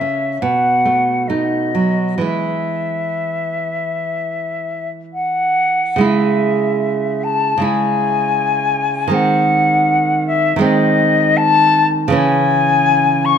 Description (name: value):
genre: romantic duo for flute and classical guitar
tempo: 59-83 BPM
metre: 4/4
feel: rubato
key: E major, C# minor from 6.0 s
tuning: A4 = 440 Hz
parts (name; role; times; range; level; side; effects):
- concert flute; melody; 0.0-13.4 s; D#5 to C#6; -16 LUFS; left 4 dB; none
- nylon-string guitar; accompaniment; 0.0-13.4 s; B2 to E4; -17 LUFS; right 4 dB; none
room: moderate recital hall reverb, RT60 1.8 s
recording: minimal, uncompressed stereo recording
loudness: -14 LUFS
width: side -8 dB against mid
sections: 0.0-6.0 A section; 6.0-13.4 B section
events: none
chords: 0.4 B7; 2.2 E; 6.0 C#m; 9.2 G#7/D#; 12.2 C#m